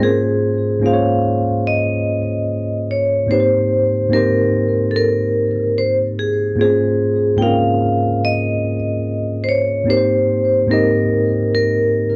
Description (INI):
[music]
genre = hip hop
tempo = 73 BPM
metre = 4/4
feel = swing 64% on 16ths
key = unclear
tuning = A4 = 440 Hz
[part]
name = vibraphone with hard mallets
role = melody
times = 0.0-12.2 s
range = Ab4 to G5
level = -20 LUFS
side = equal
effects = low-pass filter
[part]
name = mellow tine electric piano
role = accompaniment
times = 0.0-12.2 s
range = Ab2 to Eb5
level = -20 LUFS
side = equal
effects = cassette tape, low-pass filter
[sound]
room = moderate studio reverb, RT60 0.6 s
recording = none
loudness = -17 LUFS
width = mono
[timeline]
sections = 0.0-12.2 A section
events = none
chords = 0.0 Bbm9/Ab; 3.3 Cm7/Ab; 6.6 Bbm9/Ab; 9.9 Cm7/Ab